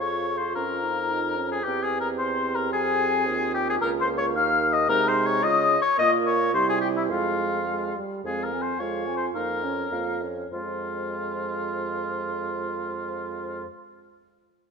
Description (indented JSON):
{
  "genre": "quick classical-period movement for wind quintet",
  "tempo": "98-111 BPM",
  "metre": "2/4",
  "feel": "straight",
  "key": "F minor",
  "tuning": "A4 = 440 Hz",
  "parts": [
    { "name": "mellow hollow silver concert flute", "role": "melody", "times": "0.0-13.6 s", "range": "C5 to F6", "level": "-31 LUFS", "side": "left 8 dB", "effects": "none" },
    { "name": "warm oboe", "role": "second line", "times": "0.0-13.7 s", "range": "E4 to F5", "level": "-26 LUFS", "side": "left 2 dB", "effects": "none" },
    { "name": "dark clarinet", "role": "accompaniment", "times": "0.0-13.7 s", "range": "C4 to Ab4", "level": "-32 LUFS", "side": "right 12 dB", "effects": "none" },
    { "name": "warm French horn", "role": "accompaniment", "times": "0.0-13.7 s", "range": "G3 to F4", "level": "-34 LUFS", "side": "right 1 dB", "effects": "none" },
    { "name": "warm bassoon", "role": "bass", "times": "0.0-13.7 s", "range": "Db2 to Db3", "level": "-32 LUFS", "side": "right 3 dB", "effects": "none" }
  ],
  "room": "moderate concert hall reverb, RT60 1.9 s",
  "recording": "none",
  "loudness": "-23 LUFS",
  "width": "side -5 dB against mid",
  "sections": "0.0-8.3 A section; 8.3-10.5 B section; 10.5-12.9 C section",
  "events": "slowing down 7.7-10.5",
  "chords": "0.0 Fm; 0.6 Db69/F; 1.6 C/E; 2.7 Fm; 3.8 Bbm/Db; 4.3 Eb5; 4.9 Ab/C; 5.4 Db; 6.0 Bbm; 6.5 C; 7.1 Fm; 9.4 Bbm/F; 10.5 Fm"
}